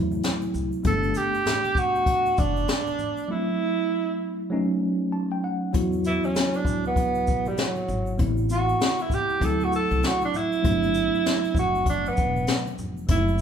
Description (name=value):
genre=hip hop, jazz-hop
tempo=98 BPM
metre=4/4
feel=swing 61% on 16ths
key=unclear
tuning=A4 = 439 Hz
part: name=mellow tine electric piano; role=accompaniment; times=0.0-13.4 s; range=F#3 to A5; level=-28 LUFS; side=equal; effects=medium stereo tremolo
part: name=upright bass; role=bass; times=0.0-13.4 s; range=E1 to E2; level=-29 LUFS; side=left 1 dB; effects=none
part: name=congas and egg shaker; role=percussion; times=0.1-13.4 s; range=none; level=-41 LUFS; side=equal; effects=none
part: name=jazz brush drum kit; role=drums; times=0.2-13.4 s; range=hi-hat, kick drum, shaker, snare drum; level=-27 LUFS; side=left 2 dB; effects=none
part: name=breathy tenor saxophone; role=melody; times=0.9-13.4 s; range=F#3 to A4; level=-24 LUFS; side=right 3 dB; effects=none
room=moderate large studio reverb, RT60 1.3 s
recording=band playing live in one room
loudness=-22 LUFS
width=side -8 dB against mid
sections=0.0-5.7 A section; 5.7-13.4 B section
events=break 3.3-5.7; tine electric piano fill 4.8-5.7; tenor saxophone solo 5.7-13.4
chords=0.0 D9 (rootless); 0.8 Gmaj7; 3.3 F#m7b5; 4.5 F#m6; 5.7 Esus2; 8.2 Am9; 9.4 D9; 10.6 Gmaj7